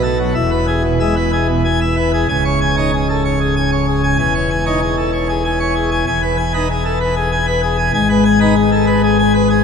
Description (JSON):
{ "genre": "classical, organ toccata", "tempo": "96 BPM", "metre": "3/4", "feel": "straight", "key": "C# minor", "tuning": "A4 = 441 Hz", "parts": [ { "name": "pipe organ, plenum", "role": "solo", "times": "0.0-9.6 s", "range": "C#1 to G#5", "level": "-13 LUFS", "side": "left 1 dB", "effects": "none" } ], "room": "wet church reverb, RT60 3.5 s", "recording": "none", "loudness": "-13 LUFS", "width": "side -6 dB against mid", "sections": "0.0-2.3 A section; 2.3-9.6 B section", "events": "none", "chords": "0.4 E; 2.3 C#5; 4.2 C#m/E; 6.1 E; 7.9 G#m" }